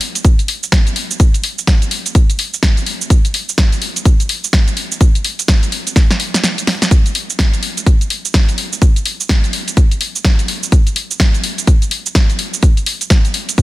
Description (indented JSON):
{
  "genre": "house",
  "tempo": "126 BPM",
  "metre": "4/4",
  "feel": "swing 61% on 16ths",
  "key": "none",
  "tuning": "none",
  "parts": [
    { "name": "house drum kit", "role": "drums", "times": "0.0-13.6 s", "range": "hi-hat, shaker, snare drum", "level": "-17 LUFS", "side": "equal", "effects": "small room ambience" },
    { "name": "electronic kick drum", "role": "drums", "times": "0.2-13.6 s", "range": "none", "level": "-11 LUFS", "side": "equal", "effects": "small room ambience" }
  ],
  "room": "little or no reverb",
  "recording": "dense, heavily limited modern master",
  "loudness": "-12 LUFS",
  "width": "side -18 dB against mid",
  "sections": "0.0-13.6 A section",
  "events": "drum fill 6.0-6.9; kick drops out 6.4-6.9",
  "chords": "none",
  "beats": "0.25 0.72 | 1.20 1.67 2.15 2.63 | 3.10 3.58 4.05 4.53 | 5.01 5.48 5.96 6.44 | 6.91 7.39 7.87 8.34 | 8.82 9.29 9.77 10.25 | 10.72 11.20 11.67 12.15 | 12.63 13.10 13.58"
}